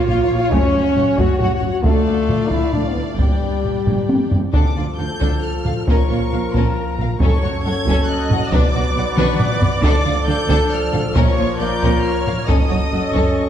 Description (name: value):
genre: cinematic, epic orchestral film score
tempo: 136 BPM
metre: 3/4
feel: straight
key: D harmonic minor from 4.5 s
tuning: A4 = 441 Hz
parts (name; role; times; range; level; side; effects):
- warm studio violin section; melody; 0.0-13.5 s; G4 to G#6; -30 LUFS; left 2 dB; none
- warm symphonic violin section; second line; 0.0-13.4 s; Db4 to G5; -26 LUFS; left 3 dB; none
- warm symphonic viola section; accompaniment; 0.0-13.5 s; F3 to Eb5; -27 LUFS; right 2 dB; none
- clear French horn section; sustained chords; 0.0-13.5 s; F3 to Gb4; -22 LUFS; left 2 dB; none
- rich symphonic double bass section; bass; 0.1-13.2 s; Gb1 to D2; -25 LUFS; right 3 dB; none
- warm symphonic cello section; bass; 0.1-13.2 s; D2 to D3; -26 LUFS; right 3 dB; none
- solo taiko drums; drums; 0.1-13.5 s; none; -19 LUFS; equal; none
- dark trumpet section; stabs; 4.5-13.5 s; A4 to B4; -27 LUFS; left 1 dB; none
room: moderate concert hall reverb, RT60 2.0 s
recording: dark, warm production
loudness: -15 LUFS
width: side -10 dB against mid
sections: 0.0-4.5 A section; 4.5-13.5 B section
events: drum fill 3.9-4.5, 9.2-9.8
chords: 0.0 Bbm; 0.5 Gbm; 1.8 Dm; 3.2 Gm; 4.5 Dm; 5.9 Bbm; 7.2 F#m; 8.5 Bm; 9.8 Dm; 11.2 Bbm; 12.5 F#m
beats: 0.09 | 0.53 0.97 1.41 | 1.85 2.29 2.73 | 3.18 3.64 4.09 | 4.54 4.99 5.43 | 5.88 6.32 6.76 | 7.20 7.64 8.08 | 8.52 8.96 9.40 | 9.84 10.28 10.72 | 11.16 11.60 12.04 | 12.48 12.93 13.38